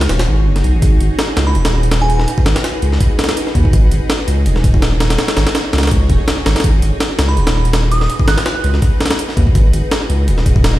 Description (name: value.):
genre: drum and bass, jungle.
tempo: 165 BPM.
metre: 4/4.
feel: swing 54% on 16ths.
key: G# minor.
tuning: A4 = 441 Hz.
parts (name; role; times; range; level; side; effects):
granular cloud pad; sustained chords; 0.0-10.8 s; D#4 to D#5; -23 LUFS; right 1 dB; built-in reverb.
saturated sub bass; bass; 0.0-10.8 s; D#1 to D#2; -13 LUFS; equal; tube saturation.
breakbeat sampler-style drum kit; drums; 0.0-10.7 s; hi-hat, kick drum, snare drum; -15 LUFS; equal; studio reverb.
glassy synth bell; melody; 1.5-2.3, 7.3-8.6 s; G#5 to F#6; -23 LUFS; right 3 dB; chorus, tremolo, dub echo.
room: little or no reverb.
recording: played on a big sound system in a bare room, stone room reverb.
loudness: -12 LUFS.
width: side -15 dB against mid.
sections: 0.0-10.8 A section.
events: none.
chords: 0.0 G#m7.